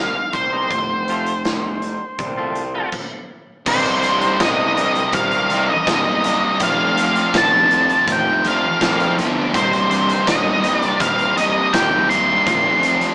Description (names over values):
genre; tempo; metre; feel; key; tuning
quiet-loud alternative rock; 82 BPM; 4/4; straight; C dorian; A4 = 439 Hz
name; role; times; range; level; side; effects
octave-fuzz lead guitar; melody; 0.0-13.1 s; C5 to C6; -17 LUFS; equal; distortion
twangy electric guitar; arpeggios; 0.0-2.9 s; G2 to F4; -27 LUFS; equal; none
fuzz picked electric bass; bass; 0.0-13.1 s; C1 to F2; -24 LUFS; equal; overdrive
big rock drum kit; drums; 0.3-13.1 s; crash cymbal, hi-hat, kick drum, snare drum; -24 LUFS; equal; none
distorted electric guitar; riff; 3.7-13.1 s; C2 to Eb4; -27 LUFS; left 1 dB; none
distorted electric guitar; riff; 3.7-13.1 s; C2 to F3; -22 LUFS; equal; overdrive
thick fuzz guitar; riff; 3.7-13.1 s; C2 to Eb4; -25 LUFS; equal; distortion
room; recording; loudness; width
moderate stone room reverb, RT60 1.0 s; band playing live in one room, small speaker sound; -15 LUFS; side -30 dB against mid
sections
0.0-3.7 A section; 3.7-13.1 B section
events
stop 2.9-3.7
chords
0.0 Cm; 0.7 F; 3.7 Cm; 6.6 F6; 9.5 Cm; 12.5 F6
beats
| 0.71 1.45 2.19 2.93 | 3.67 4.41 5.14 5.88 | 6.61 7.34 8.08 8.81 | 9.54 10.28 11.01 11.74 | 12.47